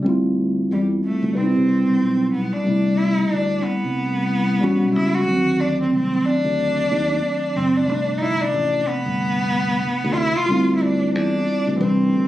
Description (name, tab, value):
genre	R&B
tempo	92 BPM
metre	4/4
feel	swing 59% on 16ths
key	C major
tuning	A4 = 441 Hz
part	tine electric piano	accompaniment	0.0-12.3 s	C3 to B4	-21 LUFS	left 1 dB	none
part	fingered electric bass	bass	0.1-12.3 s	F#1 to C3	-24 LUFS	equal	none
part	rich cello	melody	0.7-12.3 s	G3 to F#4	-21 LUFS	right 1 dB	slapback echo
room	light reverb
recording	recorded on a phone in the room, studio reverb, compression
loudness	-17 LUFS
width	side -14 dB against mid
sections	0.0-2.7 A section; 2.7-12.3 B section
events	none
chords	0.1 Dm11; 1.4 Cmaj9; 2.7 C69; 4.6 A13; 5.3 D7b9; 7.9 G9sus4; 10.5 Dm11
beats	| 0.05 0.70 1.36 2.01 | 2.66 3.31 3.96 4.62 | 5.27 5.92 6.57 7.22 | 7.88 8.53 9.18 9.83 | 10.49 11.14 11.79